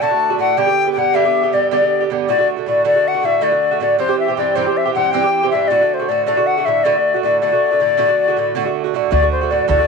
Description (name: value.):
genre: celtic folk, Celtic slip jig.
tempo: 105 BPM (dotted quarters).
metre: 9/8.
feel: straight.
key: D mixolydian.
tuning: A4 = 441 Hz.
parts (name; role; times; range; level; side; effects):
bright wooden flute; melody; 0.0-9.9 s; C5 to A5; -16 LUFS; left 8 dB; none.
Irish bouzouki; accompaniment; 0.0-9.9 s; G2 to G4; -18 LUFS; right 14 dB; none.
upright bass; bass; 9.1-9.9 s; D2; -19 LUFS; right 2 dB; none.
room: moderate spring reverb, RT60 1.9 s, small room ambience.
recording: 1960s-style stereo with parts hard left and right.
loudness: -14 LUFS.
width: side -4 dB against mid.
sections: 0.0-9.1 A section.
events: none.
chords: 0.0 D; 0.6 G; 2.3 D; 4.0 C; 5.7 D.